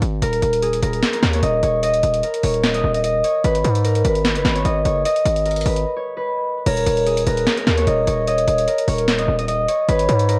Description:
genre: hip hop, trap.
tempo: 149 BPM.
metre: 4/4.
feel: half-time.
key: unclear.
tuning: A4 = 439 Hz.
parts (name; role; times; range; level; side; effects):
distorted 808-style bass; bass; 0.0-10.4 s; Eb1 to Ab2; -23 LUFS; equal; distortion.
booming analog drum machine; drums; 0.0-10.4 s; crash cymbal, hi-hat, snare drum; -27 LUFS; equal; cassette tape.
concert harp; melody; 0.2-10.4 s; Ab4 to Eb5; -21 LUFS; equal; low-pass filter, cassette tape, tape echo.
hollow clarinet-like synth lead; second line; 6.7-10.4 s; Bb4 to Eb5; -28 LUFS; equal; chorus, cassette tape, plate reverb, tape echo.
room: light reverb.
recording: home recording on cassette.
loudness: -19 LUFS.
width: mono.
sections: 0.0-6.7 A section; 6.7-10.4 B section.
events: break 0.0, 5.9-6.7.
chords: 0.2 Eb5; 3.4 Abm; 6.7 Eb5; 9.9 Abm.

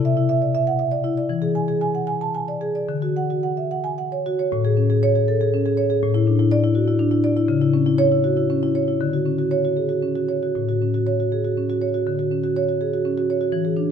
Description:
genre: classical, contemporary piece for solo marimba.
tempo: 72-84 BPM (dotted quarters).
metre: 6/8.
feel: rubato.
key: A major.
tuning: A4 = 441 Hz.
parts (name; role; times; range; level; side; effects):
marimba with soft mallets; solo; 0.0-13.9 s; A2 to A5; -18 LUFS; equal; none.
room: moderate stone room reverb, RT60 1.2 s.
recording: none.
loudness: -18 LUFS.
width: side -7 dB against mid.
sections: 0.0-4.5 A section; 4.5-13.9 B section.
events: none.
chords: 0.0 Cadd9; 1.3 E7; 2.9 Dmaj7; 4.5 Amaj7; 6.0 E7sus4/A; 7.5 C#m; 9.0 Dmaj7; 10.6 A6; 12.1 Dmaj7.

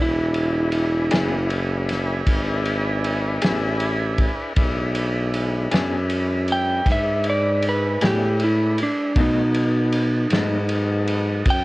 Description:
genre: slow blues.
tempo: 52 BPM (dotted quarters).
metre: 12/8.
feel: straight.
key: E mixolydian.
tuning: A4 = 436 Hz.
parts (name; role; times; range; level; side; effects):
electric slide guitar; melody; 0.0-11.6 s; D4 to G5; -22 LUFS; right 1 dB; slapback echo.
tonewheel organ; sustained chords; 0.0-11.6 s; F#3 to B4; -28 LUFS; equal; slow rotary speaker.
warm tuba; bass; 0.0-11.6 s; E1 to B2; -23 LUFS; equal; none.
warm soul drum kit; drums; 0.3-11.6 s; kick drum, ride cymbal, snare drum; -25 LUFS; equal; none.
electric guitar through a small old amp; accompaniment; 1.1-10.6 s; B2 to G#4; -25 LUFS; left 3 dB; tremolo.
room: little or no reverb.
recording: worn, warbling old tape, cassette tape, warbly pitch drift.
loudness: -19 LUFS.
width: side -19 dB against mid.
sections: 0.0-11.6 A section.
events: electric slide guitar solo 0.0-11.6.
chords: 0.0 E7; 9.2 B7.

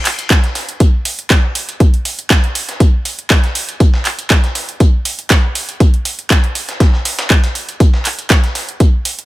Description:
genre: house.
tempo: 120 BPM.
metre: 4/4.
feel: swing 53% on 16ths.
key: none.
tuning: none.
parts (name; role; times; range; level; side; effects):
dusty soul sampler-style drum kit; drums; 0.1-9.2 s; hi-hat, snare drum; -25 LUFS; equal; high-pass filter on hats, high-pass filter on snare, high-pass filter on room.
house drum kit; drums; 0.1-9.3 s; handclaps, hi-hat; -17 LUFS; right 1 dB; none.
electronic kick drum; drums; 0.3-8.9 s; none; -10 LUFS; equal; none.
room: little or no reverb.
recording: none.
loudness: -11 LUFS.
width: side -17 dB against mid.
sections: 0.0-9.3 A section.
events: none.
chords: none.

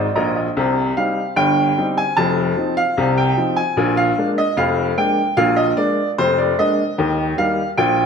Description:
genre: ragtime piano.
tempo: 75 BPM.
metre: 2/4.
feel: straight.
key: unclear.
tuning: A4 = 441 Hz.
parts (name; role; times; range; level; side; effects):
clear upright piano; solo; 0.0-8.1 s; F1 to Bb5; -16 LUFS; equal; none.
room: wet recital hall reverb, RT60 1.4 s.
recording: none.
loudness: -16 LUFS.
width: side -6 dB against mid.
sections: 0.6-8.1 A section.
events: upright piano fill 0.0-0.6.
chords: 0.0 Eb5; 0.6 Cm; 2.2 F5; 3.8 Bb7; 7.0 Eb.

